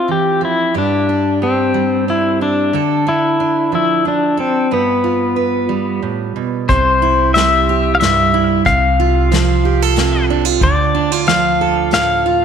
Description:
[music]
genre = acoustic folk-pop ballad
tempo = 91 BPM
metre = 3/4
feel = straight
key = C major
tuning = A4 = 440 Hz
[part]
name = pedal steel guitar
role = melody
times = 0.0-12.4 s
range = B3 to F5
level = -15 LUFS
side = left 4 dB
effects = tape echo
[part]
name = fingerpicked steel-string acoustic guitar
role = accompaniment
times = 0.0-12.4 s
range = G2 to B4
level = -17 LUFS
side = right 8 dB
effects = none
[part]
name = upright bass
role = bass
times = 6.7-12.4 s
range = C2 to D2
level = -18 LUFS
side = equal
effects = none
[part]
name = unplugged drum kit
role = drums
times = 6.7-12.1 s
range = hi-hat, kick drum, snare drum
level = -21 LUFS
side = left 3 dB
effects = none
[sound]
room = moderate echo chamber reverb, RT60 1.6 s, small room ambience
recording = 1960s-style stereo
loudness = -12 LUFS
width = side -7 dB against mid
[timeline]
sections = 0.0-6.7 A section; 6.7-12.4 B section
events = none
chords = 0.0 F5; 0.8 Gsus4; 2.7 Dm; 4.7 G7; 6.7 C; 8.7 F/C; 10.6 Dm

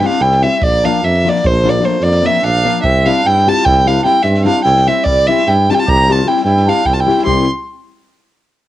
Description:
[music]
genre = balkan folk, Balkan wedding band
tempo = 298 BPM (eighths)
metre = 11/8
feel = straight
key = C mixolydian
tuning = A4 = 445 Hz
[part]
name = rich violin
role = melody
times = 0.0-7.5 s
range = C5 to C6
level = -13 LUFS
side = right 1 dB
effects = cassette tape
[part]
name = accordion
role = second line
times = 0.0-7.5 s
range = F3 to G4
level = -24 LUFS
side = right 8 dB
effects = cassette tape
[part]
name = nylon-string guitar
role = accompaniment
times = 0.0-7.5 s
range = F3 to G4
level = -18 LUFS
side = left 8 dB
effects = cassette tape
[part]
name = mellow tuba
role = bass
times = 0.0-7.5 s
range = Bb1 to G2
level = -16 LUFS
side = right 1 dB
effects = tube saturation
[part]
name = compact cocktail drum kit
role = percussion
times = 0.0-7.5 s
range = kick drum, snare drum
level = -23 LUFS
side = right 1 dB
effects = cassette tape
[sound]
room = light reverb, studio ambience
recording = home recording on cassette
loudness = -10 LUFS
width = side -13 dB against mid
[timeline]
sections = 0.0-7.3 A section; 7.3-8.7 B section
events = none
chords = 0.0 C; 0.6 Bb; 2.8 C

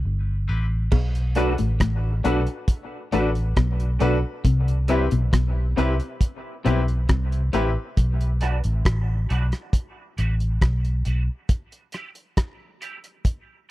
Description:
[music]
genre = dub reggae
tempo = 68 BPM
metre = 4/4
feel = straight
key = B phrygian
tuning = A4 = 438 Hz
[part]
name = vintage muted fingered electric bass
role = bass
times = 0.0-11.3 s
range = G1 to C2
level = -22 LUFS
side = equal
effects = none
[part]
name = bright concert grand piano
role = stabs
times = 0.5-7.7 s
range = C4 to B4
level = -28 LUFS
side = left 5 dB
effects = high-pass filter, dub echo
[part]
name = clean electric guitar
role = riff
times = 0.9-7.7 s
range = A2 to C3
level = -28 LUFS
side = left 4 dB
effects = none
[part]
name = cloth-damped thuddy drum kit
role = drums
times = 0.9-13.5 s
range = crash cymbal, hi-hat, kick drum, rim click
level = -21 LUFS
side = equal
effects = none
[part]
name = cowbell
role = percussion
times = 0.9-1.1 s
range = none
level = -38 LUFS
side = right 5 dB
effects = dub echo
[part]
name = electric guitar through a small old amp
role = accompaniment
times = 1.4-13.1 s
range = G3 to B4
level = -30 LUFS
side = right 4 dB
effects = ensemble chorus, high-pass filter, dub echo
[sound]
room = studio ambience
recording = dry, close 1970s-style studio recording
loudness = -20 LUFS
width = side -16 dB against mid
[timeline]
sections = 0.9-13.7 A section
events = break 0.0-0.9, 8.0-13.7; part muted 0.9-13.7; filter sweep 4.4-13.7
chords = 0.0 Cmaj7; 0.9 Bm7; 4.4 Cmaj7; 8.0 Bm7; 11.5 Bsus4

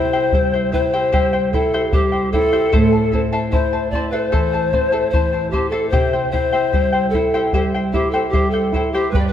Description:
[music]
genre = andean folk, Andean ensemble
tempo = 75 BPM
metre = 4/4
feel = straight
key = unclear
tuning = A4 = 437 Hz
[part]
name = reedy pan flute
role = melody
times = 0.0-9.3 s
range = G4 to D5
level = -19 LUFS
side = left 2 dB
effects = none
[part]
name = charango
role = accompaniment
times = 0.0-9.3 s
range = E4 to B5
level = -23 LUFS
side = left 2 dB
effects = none
[part]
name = nylon-string guitar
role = accompaniment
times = 0.0-9.3 s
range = G2 to E4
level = -22 LUFS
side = right 2 dB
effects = none
[part]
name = bombo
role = percussion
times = 0.3-9.3 s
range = none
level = -21 LUFS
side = equal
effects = none
[sound]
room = moderate scoring stage reverb, RT60 1.8 s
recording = none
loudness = -15 LUFS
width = side -10 dB against mid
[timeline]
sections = 0.0-9.3 A section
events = none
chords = 0.0 C; 2.7 Am; 5.9 C

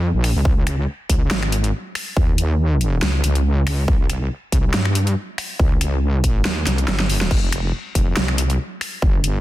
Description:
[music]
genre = heavy wobble dubstep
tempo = 140 BPM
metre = 4/4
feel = swing 54% on 16ths, half-time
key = F minor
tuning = A4 = 440 Hz
[part]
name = wobble bass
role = bass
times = 0.0-9.4 s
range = F1 to G2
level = -19 LUFS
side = equal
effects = chorus, overdrive
[part]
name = dubstep drum kit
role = drums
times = 0.2-9.3 s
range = crash cymbal, finger snaps, hi-hat, snare drum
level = -24 LUFS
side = equal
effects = studio reverb
[part]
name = electronic kick drum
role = drums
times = 0.5-9.1 s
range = none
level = -18 LUFS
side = equal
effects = studio reverb
[sound]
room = digital ambience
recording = dense, heavily limited modern master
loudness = -17 LUFS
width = side -15 dB against mid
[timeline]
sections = 0.0-9.4 A section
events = drum fill 6.7-7.3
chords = none

